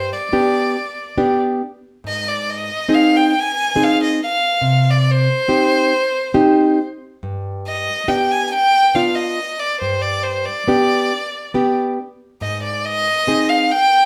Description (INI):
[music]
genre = klezmer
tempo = 69 BPM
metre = 3/4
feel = straight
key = G phrygian dominant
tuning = A4 = 441 Hz
[part]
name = rich violin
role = melody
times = 0.0-14.1 s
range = C5 to Ab5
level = -20 LUFS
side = equal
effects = none
[part]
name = nylon-string guitar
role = accompaniment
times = 0.0-13.7 s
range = G2 to Ab4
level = -19 LUFS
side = equal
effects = none
[sound]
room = wet studio reverb, RT60 0.7 s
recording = band playing live in one room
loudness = -17 LUFS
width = mono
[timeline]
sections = 0.0-14.1 A section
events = none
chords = 0.0 G; 2.0 Ab; 4.6 Cm; 7.2 G; 12.4 Ab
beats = 0.33 1.19 | 2.05 2.91 3.77 | 4.63 5.50 6.36 | 7.22 8.09 8.96 | 9.82 10.69 11.55 | 12.42 13.28